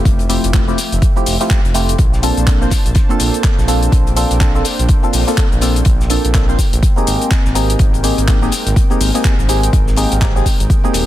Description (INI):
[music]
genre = deep house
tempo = 124 BPM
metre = 4/4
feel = swing 59% on 16ths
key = unclear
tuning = A4 = 439 Hz
[part]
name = warm analog pad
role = sustained chords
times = 0.0-11.1 s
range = F3 to A5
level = -25 LUFS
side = equal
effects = chorus, sidechain pumping
[part]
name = percussive organ stab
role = stabs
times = 0.0-11.1 s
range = A3 to C5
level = -19 LUFS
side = equal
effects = chorus, phaser, sidechain pumping, dub echo
[part]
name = smooth synth bass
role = bass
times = 0.1-11.1 s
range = Eb1 to Bb1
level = -17 LUFS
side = equal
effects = tube saturation, sidechain pumping
[part]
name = damped 70s drum kit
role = drums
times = 0.1-11.1 s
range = hi-hat, snare drum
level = -31 LUFS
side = left 5 dB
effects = none
[part]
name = deep house drum kit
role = drums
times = 0.1-11.1 s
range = cabasa, handclaps, hi-hat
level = -22 LUFS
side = left 2 dB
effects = overdrive
[part]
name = electronic kick drum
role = drums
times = 0.1-10.8 s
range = none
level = -13 LUFS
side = equal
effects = overdrive
[sound]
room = little or no reverb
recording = dense, heavily limited modern master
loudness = -11 LUFS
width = side -14 dB against mid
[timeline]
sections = 0.0-11.1 A section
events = none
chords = 0.0 Fmaj9; 2.0 Bbmaj9; 6.8 Abmaj9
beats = | 0.05 0.54 1.02 1.50 | 1.99 2.47 2.96 3.44 | 3.92 4.41 4.89 5.38 | 5.86 6.34 6.83 7.31 | 7.79 8.28 8.76 9.25 | 9.73 10.21 10.70